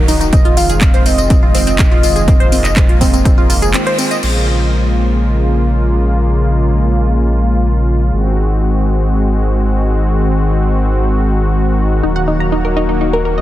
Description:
progressive house; 123 BPM; 4/4; straight; A4 = 440 Hz
warm velvety synth lead; melody; 0.0-3.7 s; Eb5 to F5; -22 LUFS; equal; chorus, sidechain pumping, tape echo
warm analog pad; sustained chords; 0.0-13.4 s; Db3 to Gb4; -17 LUFS; left 1 dB; chorus, sidechain pumping
wide unison pluck; arpeggios; 0.0-4.2, 12.0-13.4 s; C4 to Bb5; -18 LUFS; equal; vintage 12-bit sampler grit, sidechain pumping, dub echo
saturated sub bass; bass; 0.0-13.4 s; Eb1 to Bb1; -15 LUFS; equal; tube saturation, sidechain pumping
house drum kit; drums; 0.1-4.3 s; crash cymbal, handclaps, hi-hat, tambourine; -20 LUFS; left 1 dB; sidechain pumping on hats, sidechain pumping on perc, sidechain pumping on cymbals
electronic kick drum; drums; 0.3-3.4 s; -11 LUFS; equal
light reverb, digital ambience; dense, heavily limited modern master; -11 LUFS; side -14 dB against mid
0.0-4.2 A section; 4.2-13.4 B section
break 3.7-4.2; band accent 3.7
0.3 Fm7; 4.2 Bbm7; 8.1 Ab7; 12.0 Ebm
| 0.33 0.81 1.30 1.79 | 2.28 2.77 3.25 3.74 | 4.23 4.72 5.20 5.69 | 6.18 6.67 7.16 7.64 | 8.13 8.62 9.11 9.60 | 10.08 10.57 11.06 11.55 | 12.03 12.52 13.01

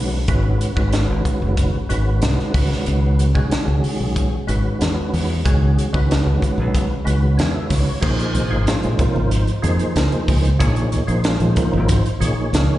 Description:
electric jazz fusion; 93 BPM; 4/4; straight; Bb phrygian; A4 = 438 Hz
percussive tonewheel organ; accompaniment; 0.0-12.8 s; Eb3 to Ab5; -22 LUFS; right 1 dB; chorus vibrato, fast rotary speaker, slapback echo
modern bright fingered electric bass; bass; 0.0-12.7 s; Gb1 to F2; -18 LUFS; equal
crisp fusion drum kit; drums; 0.3-12.7 s; crash cymbal, hi-hat, kick drum, snare drum; -22 LUFS; equal
congas; percussion; 8.3-12.4 s; -26 LUFS; left 1 dB
little or no reverb; live gig heard through the venue's PA, recital hall reverb, nothing above 10.7 kHz; -16 LUFS; side -15 dB against mid
0.0-8.0 A section; 8.0-12.8 B section
tonewheel organ fill 7.1-8.0
0.0 Abm7; 2.5 Dbm9; 8.0 Bbm9
| 0.29 0.93 1.58 2.22 | 2.87 3.51 4.16 4.80 | 5.45 6.09 6.74 7.38 | 8.03 8.67 9.32 9.96 | 10.61 11.25 11.90 12.54

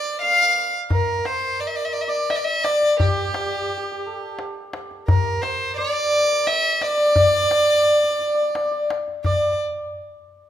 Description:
Persian modal ensemble; 86 BPM; 3/4; straight; D dastgah shur; A4 = 445 Hz
rich violin; melody; 0.0-9.6 s; G4 to F5; -20 LUFS; equal
santur; second line; 0.0-9.6 s; G4 to F5; -25 LUFS; left 2 dB
tombak; percussion; 0.9-9.6 s; -23 LUFS; left 2 dB
wet recital hall reverb, RT60 1.6 s; minimal, uncompressed stereo recording; -18 LUFS; side -11 dB against mid
0.0-9.2 A section; 9.2-10.5 B section
0.21 | 0.91 1.60 2.30 | 2.99 3.69 4.38 | 5.08 5.77 6.47 | 7.16 7.86 8.55 | 9.25

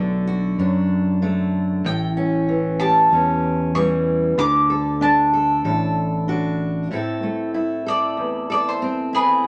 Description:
acoustic folk duo or small band; 95 BPM; 4/4; straight; A dorian; A4 = 440 Hz
fingerpicked steel-string acoustic guitar; accompaniment; 0.0-9.5 s; E2 to A4; -25 LUFS; equal
fingered electric bass; bass; 0.0-6.9 s; A1 to F#2; -24 LUFS; equal
bowl-back mandolin; melody; 1.9-9.5 s; G#4 to D6; -21 LUFS; equal
moderate studio ambience, RT60 0.5 s; -20 LUFS; mono
0.0-6.9 A section; 6.9-9.5 B section
mandolin solo 6.9-9.5
0.0 Bm7; 1.9 A7; 4.4 D; 6.9 Am
0.59 1.22 | 1.85 2.49 3.12 3.75 | 4.38 5.01 5.65 6.28 | 6.91 7.55 8.18 8.81 | 9.45

